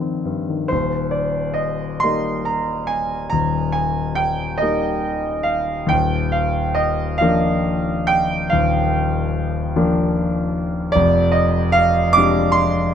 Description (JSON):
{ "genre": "classical, romantic nocturne for solo piano", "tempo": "41-51 BPM (dotted quarters)", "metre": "12/8", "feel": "rubato", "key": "Eb major", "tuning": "A4 = 435 Hz", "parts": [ { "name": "clear concert grand piano", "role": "solo", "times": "0.0-12.9 s", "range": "Eb1 to D6", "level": "-17 LUFS", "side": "equal", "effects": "none" } ], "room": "light reverb", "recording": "close, detailed microphones", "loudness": "-17 LUFS", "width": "side -8 dB against mid", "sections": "0.7-12.9 A section", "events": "none", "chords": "0.0 Cm; 0.7 Eb; 5.9 Bb/Eb; 11.0 Dm7b5/F", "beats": "| 0.70 2.03 3.33 4.61 | 5.90 7.22 8.52 9.75 | 10.95 12.16" }